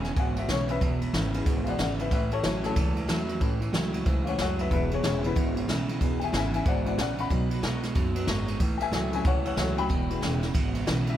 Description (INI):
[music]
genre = rockabilly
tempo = 185 BPM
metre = 4/4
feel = swing 62% on 8ths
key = E major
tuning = A4 = 440 Hz
[part]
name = picked steel-string acoustic guitar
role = accompaniment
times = 0.0-11.2 s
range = E2 to F#4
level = -34 LUFS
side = left 2 dB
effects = none
[part]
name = warm upright piano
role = accompaniment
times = 0.0-11.2 s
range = F#3 to B5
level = -32 LUFS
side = left 7 dB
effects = none
[part]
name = electric guitar through a small old amp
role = riff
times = 0.0-11.2 s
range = E2 to G#3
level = -31 LUFS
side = right 4 dB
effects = none
[part]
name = upright bass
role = bass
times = 0.0-11.2 s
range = E1 to E2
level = -31 LUFS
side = equal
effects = none
[part]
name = jazz brush drum kit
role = drums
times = 0.0-11.1 s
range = kick drum, ride cymbal, snare drum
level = -29 LUFS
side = equal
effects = none
[sound]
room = light reverb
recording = none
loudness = -24 LUFS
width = side -11 dB against mid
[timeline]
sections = 0.0-11.2 A section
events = upright piano solo 0.0-11.2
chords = 0.0 E; 2.1 A; 4.7 E; 7.3 B; 8.6 A; 9.9 E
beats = 0.17 0.49 | 0.81 1.14 1.46 1.79 | 2.11 2.44 2.76 3.09 | 3.41 3.73 4.06 4.38 | 4.71 5.03 5.36 5.68 | 6.01 6.33 6.66 6.98 | 7.30 7.63 7.95 8.28 | 8.60 8.93 9.25 9.57 | 9.90 10.22 10.55 10.87